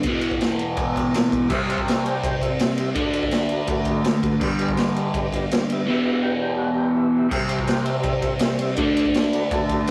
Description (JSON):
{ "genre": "garage rock duo or trio", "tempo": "165 BPM", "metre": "4/4", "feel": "straight", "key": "unclear", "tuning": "A4 = 440 Hz", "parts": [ { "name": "crunchy overdriven guitar", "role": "riff", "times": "0.0-9.9 s", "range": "E2 to D4", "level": "-24 LUFS", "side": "equal", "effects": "phaser" }, { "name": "raw garage drum kit", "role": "drums", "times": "0.0-9.9 s", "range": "crash cymbal, kick drum, ride cymbal, snare drum", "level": "-27 LUFS", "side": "equal", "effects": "none" }, { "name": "combo organ", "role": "sustained chords", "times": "1.5-9.9 s", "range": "F#4 to B5", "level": "-31 LUFS", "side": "equal", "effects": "none" } ], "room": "moderate studio reverb, RT60 0.6 s", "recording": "rough rehearsal-room recording, tube saturation", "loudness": "-22 LUFS", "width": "mono", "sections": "0.0-7.3 A section; 7.3-9.9 A section", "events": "transistor combo organ fill 9.1-9.9", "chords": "0.0 E5; 1.5 C; 3.0 D; 4.4 G; 5.9 Em; 7.3 C; 8.8 D" }